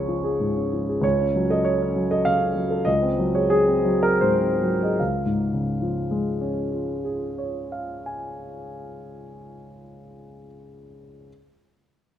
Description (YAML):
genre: classical, romantic character piece for solo piano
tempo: 70-99 BPM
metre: 3/4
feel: rubato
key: Db major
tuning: A4 = 440 Hz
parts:
  - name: warm concert grand piano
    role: solo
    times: 0.0-11.3 s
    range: Db2 to Db6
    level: -22 LUFS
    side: equal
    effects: none
room: moderate recital hall reverb, RT60 1.6 s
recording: none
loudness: -20 LUFS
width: side -10 dB against mid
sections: 0.0-1.0 A section; 1.0-5.0 B section; 5.0-9.0 C section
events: slowing down 0.1-5.0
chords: 0.0 Db; 1.0 Gbm/Db; 2.9 Ab7/Db; 5.0 Db